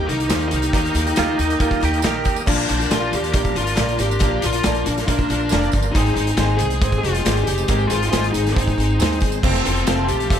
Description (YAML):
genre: folk rock and heartland rock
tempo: 138 BPM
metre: 4/4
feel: straight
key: unclear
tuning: A4 = 440 Hz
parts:
  - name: bluesy overdriven lead guitar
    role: melody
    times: 0.0-10.4 s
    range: C4 to Ab4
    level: -23 LUFS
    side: left 3 dB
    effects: distortion
  - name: bright upright piano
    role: accompaniment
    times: 0.0-10.4 s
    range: Bb3 to D5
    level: -28 LUFS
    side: right 11 dB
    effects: none
  - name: picked twelve-string acoustic guitar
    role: accompaniment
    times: 0.0-10.4 s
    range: F2 to Ab4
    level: -25 LUFS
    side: left 4 dB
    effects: none
  - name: tonewheel organ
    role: sustained chords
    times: 0.0-10.4 s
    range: Ab3 to C5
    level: -30 LUFS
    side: right 1 dB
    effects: slow rotary speaker, overdrive, chorus vibrato
  - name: upright bass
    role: bass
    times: 0.0-10.4 s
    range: F1 to Eb2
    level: -22 LUFS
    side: equal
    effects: none
  - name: loose indie drum kit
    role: drums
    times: 0.1-10.4 s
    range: crash cymbal, hi-hat, kick drum, snare drum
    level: -22 LUFS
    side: equal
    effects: none
  - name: tambourine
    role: percussion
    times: 0.2-10.3 s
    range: none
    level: -35 LUFS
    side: right 18 dB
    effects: none
  - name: pedal steel guitar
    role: second line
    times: 1.2-2.4 s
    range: Eb4 to G4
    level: -25 LUFS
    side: right 11 dB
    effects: none
room: small room ambience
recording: none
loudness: -16 LUFS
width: side -9 dB against mid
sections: 0.0-2.5 A section; 2.5-10.4 A section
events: none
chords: 0.0 Eb; 2.5 Bb; 6.0 Ab; 9.4 F